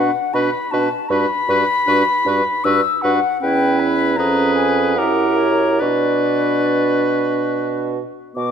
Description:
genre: classical, slow romantic movement for wind quintet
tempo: 69-79 BPM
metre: 3/4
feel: rubato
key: B minor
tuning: A4 = 440 Hz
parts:
  - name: mellow concert flute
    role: melody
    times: 0.0-8.5 s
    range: C#5 to E6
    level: -20 LUFS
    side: left 4 dB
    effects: none
  - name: bright oboe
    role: second line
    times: 0.0-8.0 s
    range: A#4 to B4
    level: -23 LUFS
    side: left 2 dB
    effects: none
  - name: bright clarinet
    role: accompaniment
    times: 0.0-8.5 s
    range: E4 to G#4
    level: -24 LUFS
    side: right 8 dB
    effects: none
  - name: dark French horn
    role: accompaniment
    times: 0.0-8.5 s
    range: B3 to E4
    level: -22 LUFS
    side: equal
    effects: none
  - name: mellow bassoon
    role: bass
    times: 0.0-8.5 s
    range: E2 to B2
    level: -21 LUFS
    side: right 3 dB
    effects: none
room: moderate recital hall reverb, RT60 1.6 s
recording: none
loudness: -15 LUFS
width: side -8 dB against mid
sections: 0.0-8.4 A section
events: none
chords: 0.0 Bm; 1.1 Gmaj7; 3.4 C#m7b5/E; 4.2 C#7/E#; 5.0 F#7b9; 5.8 Bm

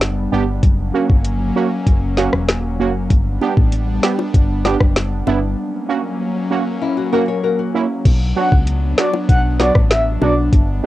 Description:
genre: dancehall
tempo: 97 BPM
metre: 4/4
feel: straight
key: B minor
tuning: A4 = 440 Hz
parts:
  - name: airy breathy pad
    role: sustained chords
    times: 0.0-10.9 s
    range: F#3 to D4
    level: -22 LUFS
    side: left 1 dB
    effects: chorus, sidechain pumping, cassette tape
  - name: solid FM bass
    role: bass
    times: 0.0-10.8 s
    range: E1 to C#2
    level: -19 LUFS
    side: equal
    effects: none
  - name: island pop drum kit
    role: drums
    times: 0.0-10.7 s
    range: crash cymbal, hi-hat, kick drum, rim click, snare drum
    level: -14 LUFS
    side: equal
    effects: vintage 12-bit sampler grit, cassette tape
  - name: synth brass stab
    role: accompaniment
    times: 0.3-10.9 s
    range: F#3 to G4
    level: -19 LUFS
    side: right 6 dB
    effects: chorus, cassette tape
  - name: bongos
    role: percussion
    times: 3.4-5.4, 9.1-10.4 s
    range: none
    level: -22 LUFS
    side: left 7 dB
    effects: none
  - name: nylon-string guitar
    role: arpeggios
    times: 6.8-8.0 s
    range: C#4 to C#5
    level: -19 LUFS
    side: left 6 dB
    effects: cassette tape
  - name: breathy flute-like synth lead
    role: melody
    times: 8.4-10.9 s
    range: D5 to F#5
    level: -19 LUFS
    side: left 1 dB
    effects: chorus, cassette tape
room: light reverb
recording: home recording on cassette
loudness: -14 LUFS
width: side -15 dB against mid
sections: 0.0-8.1 A section; 8.1-10.9 B section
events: break 5.6-8.1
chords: 0.0 G; 0.6 F#; 3.1 G; 5.6 F#; 8.1 Bm

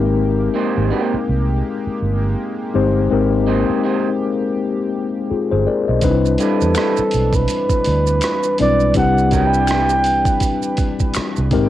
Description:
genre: R&B, neo-soul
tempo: 82 BPM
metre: 4/4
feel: swing 58% on 16ths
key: unclear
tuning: A4 = 443 Hz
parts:
  - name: mellow tine electric piano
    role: accompaniment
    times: 0.0-11.7 s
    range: G3 to Eb5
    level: -19 LUFS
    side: left 5 dB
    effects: medium stereo tremolo, cassette tape
  - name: chorused pulse-width pad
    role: sustained chords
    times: 0.0-11.7 s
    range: C3 to G5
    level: -29 LUFS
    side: right 1 dB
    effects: cassette tape
  - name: vintage muted fingered electric bass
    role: bass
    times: 0.0-11.7 s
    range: G1 to E2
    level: -19 LUFS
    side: right 2 dB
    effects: transformer saturation
  - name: electric guitar through a small old amp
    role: second line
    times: 0.5-9.9 s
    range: G3 to C5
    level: -22 LUFS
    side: right 7 dB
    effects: cassette tape
  - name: boom bap sampler-style drum kit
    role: drums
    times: 6.0-11.7 s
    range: hi-hat, kick drum, rim click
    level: -22 LUFS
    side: right 2 dB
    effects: cassette tape
  - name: maracas and finger snaps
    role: percussion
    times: 6.0-11.5 s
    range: none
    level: -30 LUFS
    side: right 2 dB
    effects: none
  - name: breathy flugelhorn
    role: melody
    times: 6.4-10.8 s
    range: A4 to G5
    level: -18 LUFS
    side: right 2 dB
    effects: cassette tape, tape echo
room: light reverb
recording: home recording on cassette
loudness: -15 LUFS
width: side -13 dB against mid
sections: 0.0-11.7 A section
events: none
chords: 0.0 Abmaj9; 6.0 Cmaj9

